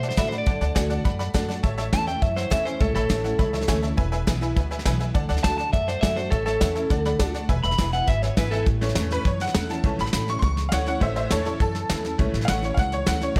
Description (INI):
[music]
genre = rockabilly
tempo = 205 BPM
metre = 4/4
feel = straight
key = A major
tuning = A4 = 440 Hz
[part]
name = electric guitar at the edge of break-up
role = melody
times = 0.0-8.7 s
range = A4 to B5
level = -29 LUFS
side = equal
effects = tape echo
[part]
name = picked steel-string acoustic guitar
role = accompaniment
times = 0.0-13.4 s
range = E2 to F#4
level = -34 LUFS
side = equal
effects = none
[part]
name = tack piano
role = accompaniment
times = 0.0-13.4 s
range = E3 to C#6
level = -32 LUFS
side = equal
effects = none
[part]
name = upright bass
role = bass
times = 0.0-13.4 s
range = E1 to B2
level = -29 LUFS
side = equal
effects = none
[part]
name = soft brush drum kit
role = drums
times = 0.0-13.4 s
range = hi-hat, kick drum, snare drum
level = -27 LUFS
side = equal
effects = none
[sound]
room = light reverb, small room reverb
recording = none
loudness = -24 LUFS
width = mono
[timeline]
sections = 0.0-8.7 A section; 8.7-13.4 B section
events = honky-tonk piano solo 8.7-13.4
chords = 0.0 D; 1.6 A; 4.0 E; 5.1 D; 6.3 A; 6.9 D; 7.5 E; 8.7 A